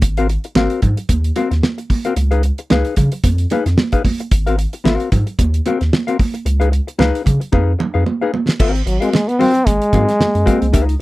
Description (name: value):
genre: funk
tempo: 112 BPM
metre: 4/4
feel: swing 56% on 16ths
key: Ab mixolydian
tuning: A4 = 440 Hz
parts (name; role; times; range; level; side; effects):
- hollow-body jazz guitar; accompaniment; 0.0-11.0 s; C4 to F5; -19 LUFS; left 5 dB; none
- warm sub bass; bass; 0.0-11.0 s; Ab1 to Db3; -17 LUFS; equal; none
- damped 70s drum kit; drums; 0.0-11.0 s; crash cymbal, hi-hat, kick drum, snare drum; -17 LUFS; equal; none
- congas; percussion; 0.0-10.9 s; none; -22 LUFS; right 4 dB; none
- breathy trombone; melody; 8.9-11.0 s; Gb3 to C4; -16 LUFS; equal; none
room: little or no reverb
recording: dry, close 1970s-style studio recording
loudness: -14 LUFS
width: side -18 dB against mid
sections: 0.0-8.6 A section; 8.6-11.0 B section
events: drum fill 7.5-8.6; trombone solo 8.6-11.0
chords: 0.0 Ab13; 2.2 Db9; 4.3 Ab13; 6.5 Db9; 8.6 Ab13